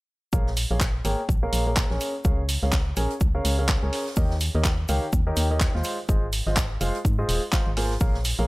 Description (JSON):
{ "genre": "piano house", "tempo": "125 BPM", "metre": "4/4", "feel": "swing 58% on 16ths", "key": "Ab major", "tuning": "A4 = 440 Hz", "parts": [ { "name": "clear grand piano", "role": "riff", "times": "0.3-8.5 s", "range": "Eb3 to Ab5", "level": "-29 LUFS", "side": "equal", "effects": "sidechain pumping, low-pass filter" }, { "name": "organ-like FM bass", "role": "bass", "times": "0.3-8.5 s", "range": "Eb1 to Ab2", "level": "-25 LUFS", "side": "equal", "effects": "sidechain pumping" }, { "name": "electronic kick drum", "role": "drums", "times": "0.3-8.1 s", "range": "none", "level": "-23 LUFS", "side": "equal", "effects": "none" }, { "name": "open jazz drum kit", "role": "drums", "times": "0.3-8.4 s", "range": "hi-hat, shaker, snare drum", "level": "-39 LUFS", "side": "left 1 dB", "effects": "sidechain pumping on hats, high-pass filter on hats, high-pass filter on snare, sidechain pumping on perc, high-pass filter on perc, high-pass filter on room" }, { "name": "house drum kit", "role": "drums", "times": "0.6-8.4 s", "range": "handclaps, hi-hat", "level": "-29 LUFS", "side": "right 1 dB", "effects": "none" } ], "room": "studio reverb", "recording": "dry, gritty hardware recording, transformer saturation", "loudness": "-22 LUFS", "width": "side -22 dB against mid", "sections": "0.3-8.5 A section", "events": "none", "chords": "0.3 Bbm7; 2.0 Db6; 4.2 Eb7; 5.8 Ab6" }